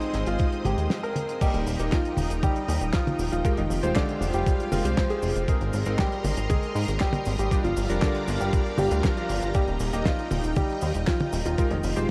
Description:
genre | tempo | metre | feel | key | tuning
italo disco | 118 BPM | 4/4 | straight | Eb major | A4 = 439 Hz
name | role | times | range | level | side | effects
clear concert grand piano | melody | 0.0-12.0 s | D3 to Bb4 | -32 LUFS | equal | analog delay
string machine, full ensemble | sustained chords | 0.0-12.1 s | Ab3 to Eb6 | -36 LUFS | equal | phaser, ensemble chorus
clear electric grand piano | stabs | 0.0-12.1 s | G3 to Eb5 | -35 LUFS | equal | analog chorus, analog delay
damped 70s drum kit | drums | 0.0-12.1 s | cabasa, crash cymbal, handclaps, hi-hat, snare drum, toms | -34 LUFS | equal | none
chorused synth bass | bass | 0.1-12.1 s | Eb1 to Ab2 | -30 LUFS | equal | none
electronic kick drum | drums | 0.4-11.7 s | none | -28 LUFS | equal | none
room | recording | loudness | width
moderate huge ambient reverb, RT60 8.6 s | dreamy mix soaked in reverb | -25 LUFS | mono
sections
0.0-1.4 A section; 1.4-12.1 B section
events
filter sweep on electric grand piano 0.0-1.4; break 0.9-1.4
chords
0.0 Ab; 1.4 Eb; 3.4 Fmadd9; 5.5 Abadd9; 7.5 Gm7; 9.5 Eb; 11.6 Fmadd9

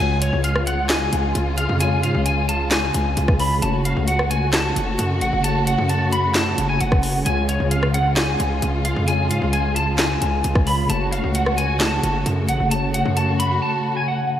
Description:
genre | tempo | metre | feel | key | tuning
hip hop, trap | 132 BPM | 4/4 | half-time | F# harmonic minor | A4 = 442 Hz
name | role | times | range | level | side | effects
electric guitar at the edge of break-up | melody | 0.0-14.4 s | C#5 to B5 | -23 LUFS | equal | ensemble chorus, low-pass filter, tape echo
tine electric piano | accompaniment | 0.0-14.4 s | C#3 to C#5 | -25 LUFS | left 1 dB | medium stereo tremolo, low-pass filter
dark symphonic string section | sustained chords | 0.0-14.4 s | C#3 to F#4 | -26 LUFS | equal | none
distorted 808-style bass | bass | 0.0-13.6 s | F#1 to G#2 | -24 LUFS | equal | distortion
trap drum kit | drums | 0.2-13.5 s | handclaps, hi-hat, kick drum, rim click, snare drum | -23 LUFS | equal | none
room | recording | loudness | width
moderate lush hall reverb, RT60 1.9 s | dreamy mix soaked in reverb, lossy compression artefacts | -17 LUFS | side -11 dB against mid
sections
0.0-14.4 A section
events
break 13.6-14.4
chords
0.0 C#; 3.6 F#m; 7.3 C#; 10.9 F#m

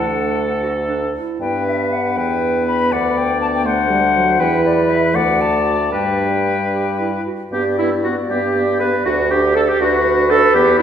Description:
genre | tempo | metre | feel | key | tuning
quick classical-period movement for wind quintet | 75-82 BPM (dotted quarters) | 6/8 | rubato | G major | A4 = 441 Hz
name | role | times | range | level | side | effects
concert flute | melody | 0.0-10.8 s | B4 to B5 | -20 LUFS | left 6 dB | none
warm oboe | second line | 0.0-10.8 s | E4 to D5 | -21 LUFS | left 2 dB | none
clear clarinet | accompaniment | 0.0-10.8 s | D4 to B4 | -20 LUFS | right 5 dB | none
warm French horn | accompaniment | 0.0-10.8 s | E3 to D4 | -24 LUFS | equal | none
clear bassoon | bass | 0.0-10.8 s | D2 to G2 | -21 LUFS | right 1 dB | none
room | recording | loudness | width
wet recital hall reverb, RT60 1.6 s | heard from further back in the room | -14 LUFS | side -8 dB against mid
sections
0.0-7.5 A section; 7.5-10.8 B section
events
none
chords
0.0 D; 1.4 G; 2.9 D; 4.4 E5; 5.1 D; 5.9 G; 9.1 D

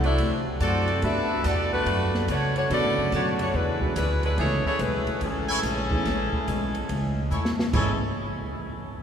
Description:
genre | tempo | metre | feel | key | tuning
jazz, big band swing | 143 BPM | 4/4 | swing 65% on 8ths | A major | A4 = 440 Hz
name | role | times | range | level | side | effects
bright saxophone section | melody | 0.0-8.0 s | E3 to E5 | -27 LUFS | left 1 dB | none
picked steel-string acoustic guitar | accompaniment | 0.0-8.0 s | A2 to A4 | -34 LUFS | left 2 dB | none
upright bass | bass | 0.0-8.0 s | A1 to C#3 | -28 LUFS | equal | none
open jazz drum kit | drums | 0.0-7.9 s | hi-hat, kick drum, ride cymbal, snare drum, toms | -32 LUFS | right 1 dB | none
bright trumpet section | stabs | 0.6-7.9 s | E4 to A5 | -34 LUFS | equal | none
warm upright piano | accompaniment | 1.0-8.0 s | C#3 to G#4 | -34 LUFS | right 3 dB | none
room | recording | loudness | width
wet cathedral reverb, RT60 6.6 s | recorded in a church or concert hall | -23 LUFS | side -8 dB against mid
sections
0.0-7.7 A section; 7.7-9.0 B section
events
drum fill 7.3-7.7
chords
0.0 D7; 1.0 Gmaj9; 2.7 Bm7; 3.5 E7; 4.4 Amaj7

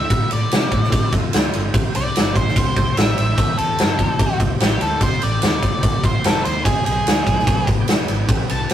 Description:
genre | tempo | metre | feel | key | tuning
blues rock power trio and southern rock | 147 BPM | 4/4 | straight | A minor | A4 = 440 Hz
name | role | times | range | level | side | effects
octave-fuzz lead guitar | melody | 0.0-8.7 s | G4 to A5 | -22 LUFS | equal | distortion
overdriven tonewheel organ | sustained chords | 0.0-8.7 s | B3 to G5 | -32 LUFS | right 2 dB | none
vintage muted fingered electric bass | bass | 0.0-8.7 s | E1 to C3 | -23 LUFS | equal | none
big rock drum kit | drums | 0.1-8.7 s | kick drum, ride cymbal, snare drum | -18 LUFS | equal | none
room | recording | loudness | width
moderate booth ambience, RT60 0.2 s | rough rehearsal-room recording, warm saturation | -16 LUFS | side -10 dB against mid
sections
0.0-8.7 A section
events
lead electric guitar solo 0.0-8.7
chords
0.0 Dm9; 1.7 Am7; 5.0 F7; 6.7 E7#9

